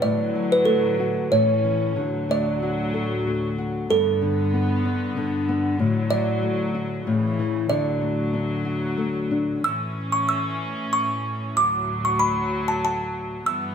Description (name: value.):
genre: children's music, lullaby.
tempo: 94 BPM.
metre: 3/4.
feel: rubato.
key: D major.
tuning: A4 = 441 Hz.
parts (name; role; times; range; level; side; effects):
music box; melody; 0.0-13.7 s; A4 to E6; -23 LUFS; right 3 dB; none.
nylon-string guitar; accompaniment; 0.0-9.6 s; G2 to A4; -24 LUFS; left 4 dB; none.
warm studio string section; sustained chords; 0.0-13.7 s; D2 to C#4; -27 LUFS; equal; none.
room: moderate recital hall reverb, RT60 1.4 s.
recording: none.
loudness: -21 LUFS.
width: side -7 dB against mid.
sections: 0.0-9.6 A section; 9.6-13.7 B section.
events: none.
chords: 0.0 D/A; 1.3 A; 2.0 D; 3.9 G; 5.8 D/A; 7.1 A; 7.7 D; 9.6 A; 11.6 D.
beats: | 0.03 0.67 1.32 | 1.97 2.62 3.26 | 3.90 4.53 5.16 | 5.79 6.42 7.05 | 7.69 8.33 8.98 | 9.63 10.28 10.92 | 11.55 12.19 12.83 | 13.46.